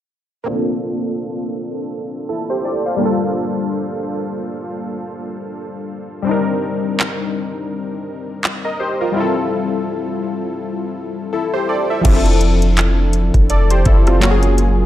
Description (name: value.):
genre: contemporary R&B.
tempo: 83 BPM.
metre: 4/4.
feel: swing 58% on 16ths.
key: unclear.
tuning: A4 = 442 Hz.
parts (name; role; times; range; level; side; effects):
warm analog keys; accompaniment; 0.4-14.9 s; F3 to F5; -19 LUFS; left 1 dB; chorus, low-pass filter.
smooth R&B drum kit; drums; 7.0-14.8 s; crash cymbal, handclaps, hi-hat, kick drum, rim click; -17 LUFS; equal; none.
warm 808-style bass; bass; 12.1-14.9 s; F1 to Gb1; -14 LUFS; equal; none.
room: little or no reverb.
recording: none.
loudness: -16 LUFS.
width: side -13 dB against mid.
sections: 0.5-12.0 A section; 12.0-14.9 B section.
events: filter sweep on synth keys 0.5-12.0.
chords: 0.5 Bbmaj9; 3.0 Gm9; 6.3 Cm9/G; 9.2 Fmaj9; 12.0 Dm9/F; 14.2 Gbmaj7.